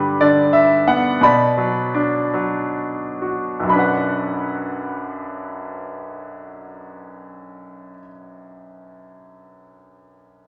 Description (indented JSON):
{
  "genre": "classical, lyrical solo piano",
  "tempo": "41-60 BPM (dotted quarters)",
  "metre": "6/8",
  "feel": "rubato",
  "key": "B minor",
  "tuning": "A4 = 440 Hz",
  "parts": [
    { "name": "bright grand piano", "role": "solo", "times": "0.0-10.5 s", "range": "B1 to B5", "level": "-20 LUFS", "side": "equal", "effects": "none" }
  ],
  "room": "wet recital hall reverb, RT60 1.3 s",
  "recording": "none",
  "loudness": "-19 LUFS",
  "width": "mono",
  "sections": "0.0-3.7 A section; 3.7-9.3 B section",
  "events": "slowing down 0.0-3.7",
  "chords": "0.0 G; 1.2 Bm"
}